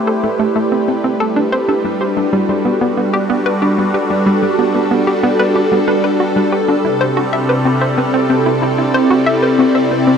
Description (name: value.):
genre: ambient, sequencer-driven space music.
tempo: 93 BPM.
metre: 4/4.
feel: straight.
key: unclear.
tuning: A4 = 441 Hz.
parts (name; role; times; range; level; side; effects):
phased analog pad; sustained chords; 0.0-10.2 s; C3 to D5; -14 LUFS; equal; phaser, chorus.
bubbling stepped-filter texture; texture; 0.0-10.2 s; G3; -23 LUFS; equal; chorus, built-in reverb.
hollow square pluck; riff; 0.1-10.2 s; G3 to E5; -17 LUFS; equal; chorus, tape echo.
room: wet huge ambient reverb, RT60 7.9 s.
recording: none.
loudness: -12 LUFS.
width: side -7 dB against mid.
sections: 0.0-10.2 A section.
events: none.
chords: 0.0 Am7; 1.7 Gmaj7; 6.8 C6.